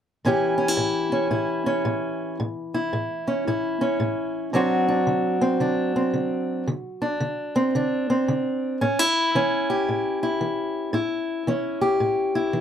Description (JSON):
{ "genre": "blues", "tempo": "112 BPM", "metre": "4/4", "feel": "swing 64% on 8ths", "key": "A mixolydian", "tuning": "A4 = 440 Hz", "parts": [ { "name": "fingerpicked steel-string acoustic guitar", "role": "solo", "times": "0.2-12.6 s", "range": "A2 to G4", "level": "-21 LUFS", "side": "equal", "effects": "none" } ], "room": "light reverb", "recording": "close, detailed microphones", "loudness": "-21 LUFS", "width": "side -9 dB against mid", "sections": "0.2-8.8 A section; 8.8-12.6 B section", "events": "none", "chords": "0.2 A7; 4.5 D7; 8.8 A7", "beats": "| 0.24 0.78 1.31 1.85 | 2.38 2.92 3.46 3.99 | 4.53 5.06 5.60 6.13 | 6.67 7.20 7.74 8.27 | 8.80 9.34 9.87 10.40 | 10.94 11.47 12.00 12.54" }